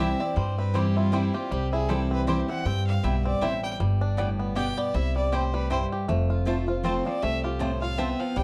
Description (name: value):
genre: bluegrass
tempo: 158 BPM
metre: 3/4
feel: swing 56% on 8ths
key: C major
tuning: A4 = 440 Hz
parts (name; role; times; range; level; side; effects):
- clear fiddle; melody; 0.0-8.4 s; E4 to G5; -34 LUFS; equal; none
- picked steel-string acoustic guitar; accompaniment; 0.0-8.4 s; F2 to F4; -31 LUFS; equal; none
- bluegrass banjo; arpeggios; 0.0-8.4 s; F3 to G4; -35 LUFS; equal; none
- mandolin; stabs; 0.0-8.1 s; B3 to A5; -36 LUFS; equal; none
- upright bass; bass; 0.0-8.4 s; F1 to G2; -30 LUFS; equal; none
room: light reverb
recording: dark, warm production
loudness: -26 LUFS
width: mono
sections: 0.0-6.1 A section; 6.1-8.4 A section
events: none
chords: 0.0 C; 3.8 G; 4.9 C; 6.1 F